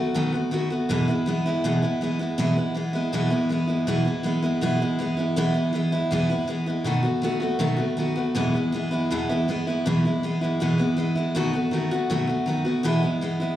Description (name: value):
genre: rock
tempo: 160 BPM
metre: 4/4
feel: straight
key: E major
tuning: A4 = 439 Hz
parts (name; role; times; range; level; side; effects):
- picked steel-string acoustic guitar; solo; 0.0-13.6 s; E2 to F#4; -22 LUFS; equal; slapback echo
room: moderate club reverb, RT60 0.8 s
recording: live gig heard through the venue's PA, club reverb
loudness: -22 LUFS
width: side -12 dB against mid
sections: 0.0-2.4 A section; 2.4-13.6 B section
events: none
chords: 0.0 B7; 0.9 E; 6.9 B7; 8.4 E; 11.4 B7; 12.8 E